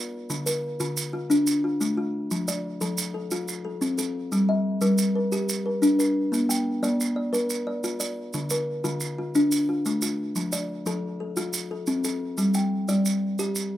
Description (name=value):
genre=southern african traditional, mbira-style interlocking cycle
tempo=119 BPM (dotted quarters)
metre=12/8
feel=straight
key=G equiheptatonic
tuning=A4 = 440 Hz
part: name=kalimba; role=arpeggios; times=0.0-13.7 s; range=D3 to G5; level=-24 LUFS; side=left 1 dB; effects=none
part: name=maracas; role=percussion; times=0.3-13.7 s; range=none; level=-31 LUFS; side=right 5 dB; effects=none
room=little or no reverb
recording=recorded outdoors, with no room sound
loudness=-23 LUFS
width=side -13 dB against mid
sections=0.0-12.4 A section; 12.4-13.8 A section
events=none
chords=0.3 Dm; 2.3 F; 4.3 Gm; 6.3 Bb; 8.3 Dm; 10.4 F; 12.4 G5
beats=| 0.30 0.80 1.30 1.80 | 2.31 2.81 3.31 3.81 | 4.32 4.82 5.32 5.82 | 6.33 6.83 7.33 7.83 | 8.34 8.84 9.35 9.85 | 10.35 10.86 11.36 11.87 | 12.37 12.88 13.38